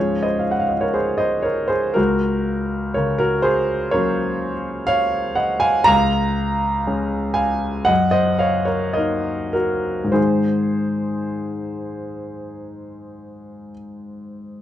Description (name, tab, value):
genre	classical, romantic nocturne for solo piano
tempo	49-63 BPM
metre	4/4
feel	rubato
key	Db major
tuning	A4 = 440 Hz
part	clear grand piano	solo	0.0-14.6 s	Db2 to Bb5	-18 LUFS	equal	none
room	light reverb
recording	dark, warm production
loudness	-18 LUFS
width	side -12 dB against mid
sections	0.0-14.6 A section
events	none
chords	0.0 Db; 7.9 Ebm/Gb; 10.2 Ab